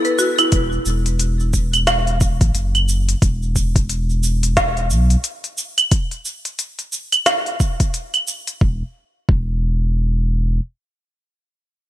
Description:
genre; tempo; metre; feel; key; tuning
organic downtempo; 89 BPM; 4/4; swing 59% on 16ths; unclear; A4 = 436 Hz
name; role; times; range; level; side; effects
buzzing marimba with medium hard mallets; arpeggios; 0.0-0.5 s; E4 to B4; -20 LUFS; left 1 dB; vintage 12-bit sampler grit, ping-pong delay
organic electronic drum kit; drums; 0.0-8.6 s; cabasa, claves, hi-hat, snare drum; -20 LUFS; right 1 dB; gated reverb
warm sub bass; bass; 0.5-10.6 s; E1 to B1; -18 LUFS; equal; sidechain pumping
electronic kick drum; drums; 0.5-9.5 s; none; -17 LUFS; equal; none
room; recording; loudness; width
light reverb, digital ambience; bright 1980s-style digital production; -16 LUFS; side -13 dB against mid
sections
0.0-8.6 A section; 8.6-11.3 B section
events
none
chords
none

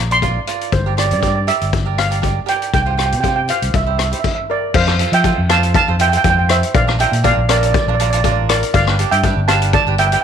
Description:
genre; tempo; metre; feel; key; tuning
calypso; 120 BPM; 4/4; swing 54% on 16ths; F major; A4 = 439 Hz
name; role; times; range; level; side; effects
steel pan; melody; 0.0-10.2 s; Bb4 to C6; -17 LUFS; right 3 dB; none
fingered electric bass; bass; 0.0-10.1 s; G1 to F3; -18 LUFS; equal; none
cavaquinho; accompaniment; 0.1-10.2 s; D4 to D5; -23 LUFS; right 13 dB; none
street-band drum kit; drums; 0.1-10.2 s; crash cymbal, hi-hat, kick drum, rim click; -19 LUFS; left 4 dB; none
room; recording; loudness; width
light reverb, studio reverb; 1960s-style stereo; -13 LUFS; side -8 dB against mid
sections
0.0-4.7 A section; 4.7-10.2 B section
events
stop 4.2-4.7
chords
0.0 Bb; 0.7 Gm; 2.7 Csus4; 3.7 C; 4.7 F; 6.7 Bb; 8.7 G

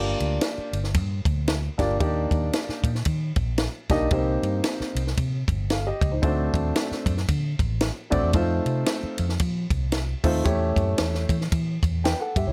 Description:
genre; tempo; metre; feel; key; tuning
uptempo 1960s-style soul; 114 BPM; 4/4; swing 59% on 8ths; G minor; A4 = 440 Hz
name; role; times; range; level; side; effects
dark upright piano; accompaniment; 0.0-12.5 s; A3 to G5; -28 LUFS; equal; plate reverb
vintage muted fingered electric bass; bass; 0.0-12.5 s; G1 to F3; -28 LUFS; equal; none
compact cocktail drum kit; drums; 0.2-12.5 s; hi-hat, kick drum, ride cymbal, snare drum; -29 LUFS; equal; none
room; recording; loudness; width
light reverb; none; -25 LUFS; mono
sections
0.0-12.5 A section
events
none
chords
0.0 Gm7; 2.0 Ebmaj7; 4.1 Cm7; 6.2 D7; 8.3 F7; 10.5 A7/E

